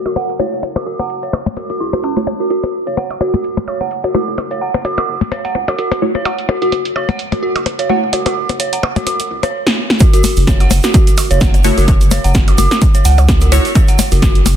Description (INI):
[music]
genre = minimal techno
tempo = 128 BPM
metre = 4/4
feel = swing 56% on 16ths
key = F# minor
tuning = A4 = 440 Hz
[part]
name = dark detuned synth bell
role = riff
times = 0.1-14.3 s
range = C#4 to F#5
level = -18 LUFS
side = right 2 dB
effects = chorus, phaser, sidechain pumping, low-pass filter, tape echo
[part]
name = round analog bass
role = bass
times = 0.1-14.6 s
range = E1 to C#2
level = -15 LUFS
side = equal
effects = sidechain pumping, high-pass filter
[part]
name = punchy analog drum machine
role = drums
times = 0.1-14.6 s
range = hi-hat, snare drum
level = -19 LUFS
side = right 1 dB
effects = overdrive
[part]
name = percussion blips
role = percussion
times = 0.1-14.6 s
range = none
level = -20 LUFS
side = left 4 dB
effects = overdrive, ping-pong delay
[part]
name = wavetable chord stab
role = stabs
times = 0.4-8.0, 11.6-13.6 s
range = A3 to C#5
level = -20 LUFS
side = left 1 dB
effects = ping-pong delay
[part]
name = electronic kick drum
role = drums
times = 10.0-14.3 s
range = none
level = -11 LUFS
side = equal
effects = overdrive
[part]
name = egg shaker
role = percussion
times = 10.0-14.6 s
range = none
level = -27 LUFS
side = right 6 dB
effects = none
[sound]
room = light reverb, digital ambience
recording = dense, heavily limited modern master, low-pass filter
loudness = -12 LUFS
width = side -9 dB against mid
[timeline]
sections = 0.0-10.0 A section; 10.0-14.6 B section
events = filter sweep on synth bell 0.0-10.0; filter sweep 0.0-10.0; drum fill 9.7-10.0; drop 10.0-14.6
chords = 0.0 F#5